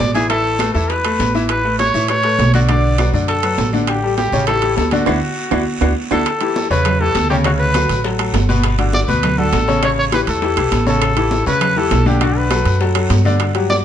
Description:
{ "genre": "latin, salsa", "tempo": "201 BPM", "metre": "4/4", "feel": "straight", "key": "unclear", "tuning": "A4 = 441 Hz", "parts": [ { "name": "clear trumpet", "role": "melody", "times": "0.0-13.8 s", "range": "F#4 to D5", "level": "-19 LUFS", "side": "equal", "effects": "slapback echo" }, { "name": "bright baby grand piano", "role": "accompaniment", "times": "0.0-13.8 s", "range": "B2 to E5", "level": "-20 LUFS", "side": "left 4 dB", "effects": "none" }, { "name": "upright bass", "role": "bass", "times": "0.0-13.8 s", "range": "G1 to A2", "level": "-18 LUFS", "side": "right 1 dB", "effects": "none" }, { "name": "bongos", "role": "percussion", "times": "0.0-13.8 s", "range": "none", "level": "-28 LUFS", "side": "left 6 dB", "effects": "none" }, { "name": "congas", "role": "percussion", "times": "0.0-13.8 s", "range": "none", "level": "-24 LUFS", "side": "right 3 dB", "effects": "none" }, { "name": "guiro", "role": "percussion", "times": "0.0-13.8 s", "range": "none", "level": "-32 LUFS", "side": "right 4 dB", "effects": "none" }, { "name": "timbales", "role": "percussion", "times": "0.0-13.7 s", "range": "none", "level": "-24 LUFS", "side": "right 12 dB", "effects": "none" }, { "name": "claves", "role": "percussion", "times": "0.3-13.6 s", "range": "none", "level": "-31 LUFS", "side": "right 5 dB", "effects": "none" } ], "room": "light reverb", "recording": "dark, warm production, nothing above 10.7 kHz", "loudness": "-13 LUFS", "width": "side -9 dB against mid", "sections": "0.0-6.3 A section; 6.3-13.8 B section", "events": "band accent 5.1-6.3; drum fill 5.8-6.3", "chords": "0.3 Aadd9; 2.7 Bm; 3.9 A7sus4; 4.5 A5; 5.1 Dadd9; 6.3 A7; 7.5 Gmaj9; 9.8 A7; 11.0 A9; 12.2 Bm7" }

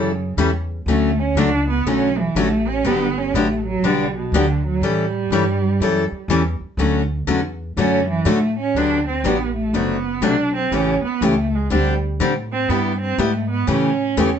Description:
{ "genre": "acoustic string swing (jazz manouche)", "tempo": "122 BPM", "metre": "4/4", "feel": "swing 64% on 8ths", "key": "D major, G major from 8.8 s", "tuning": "A4 = 439 Hz", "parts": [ { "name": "rich cello", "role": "second line", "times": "0.0-14.4 s", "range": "B2 to D4", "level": "-21 LUFS", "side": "right 3 dB", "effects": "none" }, { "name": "picked steel-string acoustic guitar", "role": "accompaniment", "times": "0.0-14.3 s", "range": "C3 to A4", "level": "-19 LUFS", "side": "left 4 dB", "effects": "none" }, { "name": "upright bass", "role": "bass", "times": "0.0-14.4 s", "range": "F#1 to A2", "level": "-23 LUFS", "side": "equal", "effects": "none" } ], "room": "moderate studio reverb, RT60 0.5 s", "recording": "heard from further back in the room, nothing above 8.0 kHz", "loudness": "-17 LUFS", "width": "side -8 dB against mid", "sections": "0.0-8.8 A section; 8.8-14.4 A section", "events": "cello solo 0.0-14.4", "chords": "0.0 A7; 0.9 Dmaj7; 2.8 Gmaj7; 4.8 A7; 6.8 Dmaj7; 8.8 Gmaj9; 9.7 D7/F#; 10.7 A7; 11.7 D7sus4; 12.7 G6; 13.7 A7" }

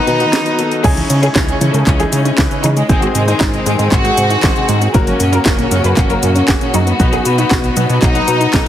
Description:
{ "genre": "italo disco", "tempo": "117 BPM", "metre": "4/4", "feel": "straight", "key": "C# minor", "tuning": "A4 = 441 Hz", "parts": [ { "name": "bright studio violin section", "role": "melody", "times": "0.0-8.7 s", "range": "G#3 to B4", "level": "-18 LUFS", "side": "equal", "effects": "tape echo" }, { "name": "warm studio string section", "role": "sustained chords", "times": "0.0-8.7 s", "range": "C#3 to G#4", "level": "-21 LUFS", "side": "equal", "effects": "vintage 12-bit sampler grit" }, { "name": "bright concert grand piano", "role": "stabs", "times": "0.0-8.7 s", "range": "A#3 to C#5", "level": "-21 LUFS", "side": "left 4 dB", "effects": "none" }, { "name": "fat analog bass", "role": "bass", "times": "0.1-8.6 s", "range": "F#1 to C#3", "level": "-16 LUFS", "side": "equal", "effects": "none" }, { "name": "house drum kit", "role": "drums", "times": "0.1-8.6 s", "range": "cabasa, crash cymbal, handclaps, hi-hat, snare drum", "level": "-20 LUFS", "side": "equal", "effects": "overdrive" }, { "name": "soft round pluck", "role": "arpeggios", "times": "0.8-8.6 s", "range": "A#2 to D#4", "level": "-22 LUFS", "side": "right 2 dB", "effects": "chorus, digital delay" }, { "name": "electronic kick drum", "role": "drums", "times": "0.8-8.6 s", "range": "none", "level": "-16 LUFS", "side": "equal", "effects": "overdrive" } ], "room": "light reverb, digital ambience", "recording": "heavily compressed radio sound, multiband compression", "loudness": "-11 LUFS", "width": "side -11 dB against mid", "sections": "0.8-8.7 A section", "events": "break 0.3-0.8", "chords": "0.0 B; 0.8 C#madd9; 2.9 G#; 4.9 F#; 7.0 B" }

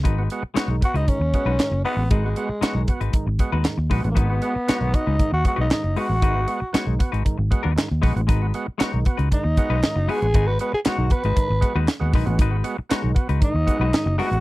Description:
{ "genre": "funk", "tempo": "117 BPM", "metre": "4/4", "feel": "straight", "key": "G# minor", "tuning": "A4 = 440 Hz", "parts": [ { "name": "semi-hollow electric guitar", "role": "accompaniment", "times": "0.0-14.4 s", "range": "G#3 to C#5", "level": "-29 LUFS", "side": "left 8 dB", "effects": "none" }, { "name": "vintage muted fingered electric bass", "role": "bass", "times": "0.0-14.4 s", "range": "F#1 to D#2", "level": "-22 LUFS", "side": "equal", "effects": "none" }, { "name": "overdriven tonewheel organ", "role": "stabs", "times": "0.1-14.4 s", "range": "G#2 to F#4", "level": "-29 LUFS", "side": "right 3 dB", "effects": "none" }, { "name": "crisp fusion drum kit", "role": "drums", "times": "0.1-14.4 s", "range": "handclaps, hi-hat, kick drum, snare drum", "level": "-20 LUFS", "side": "equal", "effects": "none" }, { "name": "growling tenor saxophone", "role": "melody", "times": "0.9-14.4 s", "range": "G#3 to B4", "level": "-24 LUFS", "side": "equal", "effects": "none" } ], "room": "little or no reverb", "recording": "dry, close 1970s-style studio recording", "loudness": "-19 LUFS", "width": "side -19 dB against mid", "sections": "0.1-14.4 A section", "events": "tenor saxophone solo 0.1-14.4", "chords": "0.1 G#m7" }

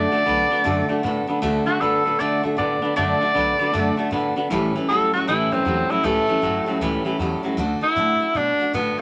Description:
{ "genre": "rockabilly", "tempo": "156 BPM", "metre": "4/4", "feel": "swing 63% on 8ths", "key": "D major", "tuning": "A4 = 437 Hz", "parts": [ { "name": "clear tenor saxophone", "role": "melody", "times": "0.0-9.0 s", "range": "A3 to D5", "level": "-23 LUFS", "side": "equal", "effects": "none" }, { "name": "picked steel-string acoustic guitar", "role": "accompaniment", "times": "0.0-9.0 s", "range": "A2 to A4", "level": "-28 LUFS", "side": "equal", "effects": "none" }, { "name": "twangy electric guitar", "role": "riff", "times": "0.0-7.6 s", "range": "A2 to B3", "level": "-26 LUFS", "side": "equal", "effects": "none" }, { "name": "upright bass", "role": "bass", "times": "0.0-9.0 s", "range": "G1 to B2", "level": "-33 LUFS", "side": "equal", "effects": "none" } ], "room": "moderate studio reverb, RT60 0.6 s", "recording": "none", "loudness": "-21 LUFS", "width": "mono", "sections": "0.0-7.6 A section; 7.6-9.0 B section", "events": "none", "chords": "0.0 D; 4.5 A7; 7.6 D" }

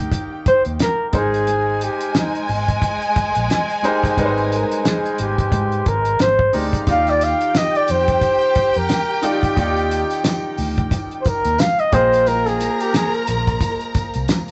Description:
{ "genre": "lush 1970s-style soul", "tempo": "89 BPM", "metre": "4/4", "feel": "swing 58% on 16ths", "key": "Eb major", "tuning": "A4 = 441 Hz", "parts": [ { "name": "warm studio violin section", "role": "second line", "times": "0.0-14.5 s", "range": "Ab3 to Bb5", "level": "-27 LUFS", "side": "equal", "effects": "none" }, { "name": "clear baby grand piano", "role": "accompaniment", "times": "0.0-14.5 s", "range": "Eb3 to G5", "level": "-27 LUFS", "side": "equal", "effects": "none" }, { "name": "vintage muted fingered electric bass", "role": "bass", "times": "0.0-14.3 s", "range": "Ab1 to Ab2", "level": "-27 LUFS", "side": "equal", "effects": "none" }, { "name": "cloth-damped thuddy drum kit", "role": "drums", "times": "0.1-14.5 s", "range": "hi-hat, kick drum, snare drum", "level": "-24 LUFS", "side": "equal", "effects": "none" }, { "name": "congas", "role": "percussion", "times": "0.1-14.5 s", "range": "none", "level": "-38 LUFS", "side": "equal", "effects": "none" }, { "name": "mellow flugelhorn", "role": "melody", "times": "0.5-13.5 s", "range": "Eb4 to F5", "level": "-21 LUFS", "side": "equal", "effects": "none" }, { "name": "worn celesta", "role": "texture", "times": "5.5-7.2, 11.9-12.6 s", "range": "G5 to C6", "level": "-36 LUFS", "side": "equal", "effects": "none" }, { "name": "tambourine", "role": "percussion", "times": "6.9-14.5 s", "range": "none", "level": "-44 LUFS", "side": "equal", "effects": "none" } ], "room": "wet small room ambience, RT60 0.5 s", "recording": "rough rehearsal-room recording, nothing above 8.0 kHz", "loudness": "-18 LUFS", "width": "mono", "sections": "0.0-14.5 A section", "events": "flugelhorn solo 0.0-14.5", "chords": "0.0 Ebmaj9; 1.1 Abmaj9; 6.9 Ebmaj9; 11.9 Bb9sus4" }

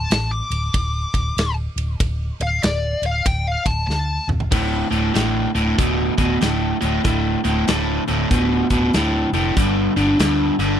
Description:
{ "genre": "blues rock power trio and southern rock", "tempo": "95 BPM", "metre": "4/4", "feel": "swing 63% on 8ths", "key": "D minor", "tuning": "A4 = 440 Hz", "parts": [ { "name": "fuzz lead guitar", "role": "melody", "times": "0.0-4.3 s", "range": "D5 to D6", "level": "-24 LUFS", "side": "left 3 dB", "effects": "wah, distortion" }, { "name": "vintage muted fingered electric bass", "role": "bass", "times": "0.0-10.8 s", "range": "D1 to D2", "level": "-23 LUFS", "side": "equal", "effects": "none" }, { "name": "big rock drum kit", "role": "drums", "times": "0.1-10.7 s", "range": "crash cymbal, hi-hat, kick drum, ride cymbal, snare drum, toms", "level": "-21 LUFS", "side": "equal", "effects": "none" }, { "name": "biting overdriven guitar", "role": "riff", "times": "4.5-10.8 s", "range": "D2 to D3", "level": "-18 LUFS", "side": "equal", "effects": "none" } ], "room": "little or no reverb", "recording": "dry, close 1970s-style studio recording, lossy compression artefacts", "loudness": "-17 LUFS", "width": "side -9 dB against mid", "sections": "0.0-4.5 A section; 4.5-10.8 B section", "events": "lead electric guitar solo 0.0-4.5; drum fill 3.9-4.5", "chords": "0.0 D5; 9.6 G5" }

